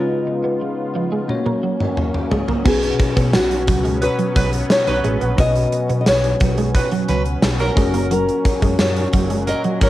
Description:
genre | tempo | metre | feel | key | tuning
1980s-style pop | 88 BPM | 4/4 | straight | B major | A4 = 441 Hz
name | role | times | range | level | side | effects
nylon-string guitar | melody | 0.0-9.9 s | E#4 to D#5 | -21 LUFS | left 1 dB | cassette tape
bell-like tine electric piano | accompaniment | 0.0-9.9 s | B2 to C#5 | -24 LUFS | left 3 dB | cassette tape
sweeping resonant pad | sustained chords | 0.0-9.9 s | A#2 to E#4 | -27 LUFS | equal | chorus, cassette tape
twelve-string electric guitar | riff | 0.0-9.9 s | E#3 to B3 | -25 LUFS | right 4 dB | ensemble chorus, cassette tape
gated 80s drum kit | drums | 1.3-9.9 s | crash cymbal, hi-hat, kick drum, snare drum, tambourine, toms | -19 LUFS | equal | cassette tape
hollow-body short-scale fingered electric bass | bass | 2.7-9.9 s | F#1 to B2 | -22 LUFS | equal | none
warm horn section | stabs | 4.0-9.9 s | F#3 to B4 | -25 LUFS | right 3 dB | cassette tape
room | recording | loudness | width
light reverb, studio ambience | home recording on cassette | -16 LUFS | side -15 dB against mid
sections
0.0-2.7 A section; 2.7-9.9 B section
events
break 0.0-2.7; drum fill 1.3-2.7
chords
0.0 C#7; 1.3 F#; 2.7 Bsus2; 7.8 F#

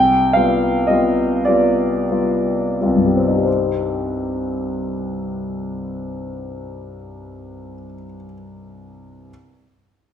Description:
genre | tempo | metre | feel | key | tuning
classical, romantic nocturne for solo piano | 27-39 BPM (dotted quarters) | 6/8 | rubato | C minor | A4 = 437 Hz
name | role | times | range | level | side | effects
warm grand piano | solo | 0.0-9.3 s | C2 to G5 | -17 LUFS | left 1 dB | none
room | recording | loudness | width
wet recital hall reverb, RT60 1.4 s | minimal, uncompressed stereo recording | -16 LUFS | side -9 dB against mid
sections
0.0-3.5 A section; 3.5-7.0 B section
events
slowing down 0.0-3.5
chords
0.0 G7/C; 3.5 Cm

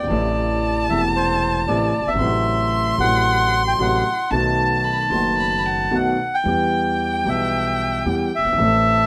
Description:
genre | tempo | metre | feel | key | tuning
tango | 113 BPM | 4/4 | rubato | E minor | A4 = 444 Hz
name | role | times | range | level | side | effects
bandoneon | melody | 0.0-9.1 s | C5 to A5 | -23 LUFS | equal | none
warm violin | second line | 0.0-9.1 s | F#5 to C6 | -27 LUFS | equal | none
dark concert grand piano | accompaniment | 0.0-9.1 s | E1 to A4 | -25 LUFS | equal | none
upright bass | bass | 0.0-9.1 s | E1 to E2 | -30 LUFS | equal | none
room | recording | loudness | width
small room ambience | rough home demo mix | -19 LUFS | mono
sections
0.0-9.1 A section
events
none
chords
0.1 Am; 2.2 F#dim/A; 4.3 B7; 6.5 Em

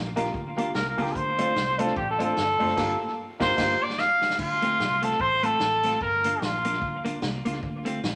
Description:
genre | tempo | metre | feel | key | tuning
ska | 148 BPM | 4/4 | swing 57% on 8ths | G minor | A4 = 440 Hz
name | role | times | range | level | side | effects
fingered electric bass | bass | 0.0-8.2 s | F#1 to D2 | -38 LUFS | equal | none
semi-hollow electric guitar | accompaniment | 0.2-8.0 s | A3 to F4 | -34 LUFS | equal | spring reverb, tape echo
dark upright piano | stabs | 0.2-3.7 s | Bb3 to C5 | -33 LUFS | equal | none
vintage drum kit | drums | 0.2-8.1 s | crash cymbal, hi-hat, kick drum, snare drum | -36 LUFS | equal | tape echo
warm trumpet | melody | 0.7-7.1 s | F4 to F5 | -26 LUFS | equal | none
room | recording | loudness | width
wet studio reverb, RT60 0.9 s | none | -25 LUFS | mono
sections
0.0-4.4 A section; 4.4-8.2 A section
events
trumpet solo 0.0-4.4, 4.4-8.2; band accent 2.8-4.4; drum fill 3.6-4.4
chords
0.0 Gm7; 1.2 Dm7; 2.8 Gm7; 4.4 Dm7; 6.0 Gm7; 7.6 Dm7

